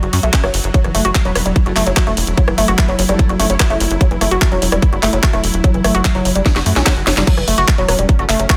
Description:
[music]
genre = psychedelic trance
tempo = 147 BPM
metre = 4/4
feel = straight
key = F# phrygian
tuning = A4 = 440 Hz
[part]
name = evolving wavetable pad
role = sustained chords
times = 0.0-8.6 s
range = F#3 to F#4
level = -25 LUFS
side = equal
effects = ensemble chorus, built-in reverb, sidechain pumping
[part]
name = woody wave-folded pluck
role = riff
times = 0.0-8.5 s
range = E3 to F#4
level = -21 LUFS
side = equal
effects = chorus, sidechain pumping, digital delay
[part]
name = tight sequencer bass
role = bass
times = 0.0-8.5 s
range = E1 to F#2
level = -21 LUFS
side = equal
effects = none
[part]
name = garage drum kit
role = drums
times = 0.0-8.6 s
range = crash cymbal, handclaps, hi-hat, rim click, snare drum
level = -21 LUFS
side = equal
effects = none
[part]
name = electronic kick drum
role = drums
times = 0.3-8.6 s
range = none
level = -16 LUFS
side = equal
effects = none
[part]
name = metallic wobble bass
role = second line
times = 1.3-3.6, 7.8-8.4 s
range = A3 to C#4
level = -34 LUFS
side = equal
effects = none
[part]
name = swell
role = sound effects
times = 6.6-7.3 s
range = none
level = -34 LUFS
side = equal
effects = none
[sound]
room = light reverb, digital ambience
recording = none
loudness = -14 LUFS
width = mono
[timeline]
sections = 0.0-8.6 A section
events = drum fill 6.5-7.3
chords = 0.0 F#5

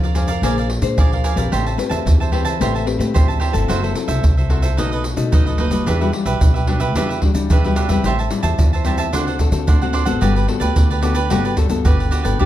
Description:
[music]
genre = samba and choro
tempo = 110 BPM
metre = 4/4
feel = straight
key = G major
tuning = A4 = 440 Hz
[part]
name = cavaquinho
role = accompaniment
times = 0.0-12.5 s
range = D4 to A5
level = -23 LUFS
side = right 6 dB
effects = none
[part]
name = nylon-string guitar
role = accompaniment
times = 0.0-12.5 s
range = A2 to C5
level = -22 LUFS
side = left 6 dB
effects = none
[part]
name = upright bass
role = bass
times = 0.0-12.5 s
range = F#1 to E3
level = -21 LUFS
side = equal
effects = none
[part]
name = egg shaker, pandeiro and surdo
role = percussion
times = 0.0-12.5 s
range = none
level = -18 LUFS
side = right 1 dB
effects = none
[sound]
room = light reverb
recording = dark, warm production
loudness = -15 LUFS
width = side -13 dB against mid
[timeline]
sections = 0.0-12.5 A section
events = none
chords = 0.0 Bb9; 1.5 Am9; 3.7 F#m7b5; 4.8 B7; 5.9 Em9; 8.0 Am7; 9.1 D7; 10.2 Gmaj9

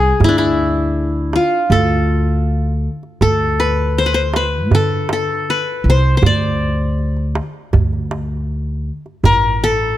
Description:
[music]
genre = Arabic maqam ensemble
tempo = 80 BPM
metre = 4/4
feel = straight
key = D maqam nikriz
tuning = A4 = 440 Hz
[part]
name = qanun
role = melody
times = 0.0-10.0 s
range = D4 to D5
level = -16 LUFS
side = left 2 dB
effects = none
[part]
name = upright bass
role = bass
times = 0.0-10.0 s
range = A1 to D3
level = -18 LUFS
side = equal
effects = none
[part]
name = darbuka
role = percussion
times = 0.0-9.5 s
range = none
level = -18 LUFS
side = right 3 dB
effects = none
[sound]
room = little or no reverb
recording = close, detailed microphones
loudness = -14 LUFS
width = side -13 dB against mid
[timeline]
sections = 0.0-9.2 A section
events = none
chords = none

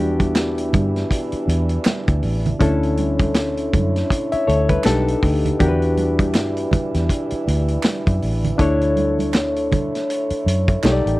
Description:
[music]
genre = lush 1970s-style soul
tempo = 80 BPM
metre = 4/4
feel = swing 58% on 16ths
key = unclear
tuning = A4 = 440 Hz
[part]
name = barky reed electric piano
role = accompaniment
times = 0.0-11.2 s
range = B3 to E5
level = -22 LUFS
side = left 2 dB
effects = overdrive
[part]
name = mellow French horn section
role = sustained chords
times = 0.0-11.2 s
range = B2 to C#5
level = -26 LUFS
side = right 2 dB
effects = none
[part]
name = vintage muted fingered electric bass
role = bass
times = 0.0-11.2 s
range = A1 to G2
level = -21 LUFS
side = equal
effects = none
[part]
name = vintage drum kit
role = drums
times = 0.2-11.2 s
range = hi-hat, kick drum, snare drum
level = -21 LUFS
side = equal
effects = none
[part]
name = congas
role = percussion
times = 0.2-11.0 s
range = none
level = -27 LUFS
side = right 4 dB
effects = none
[part]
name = group handclap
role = percussion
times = 0.4-11.0 s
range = none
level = -29 LUFS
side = right 4 dB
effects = none
[sound]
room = little or no reverb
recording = dry, close 1970s-style studio recording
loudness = -17 LUFS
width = side -18 dB against mid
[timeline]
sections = 0.0-11.2 A section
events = none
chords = 0.0 Em9; 2.6 Dmaj9; 4.9 B7alt; 5.6 Em9; 8.6 Dmaj9

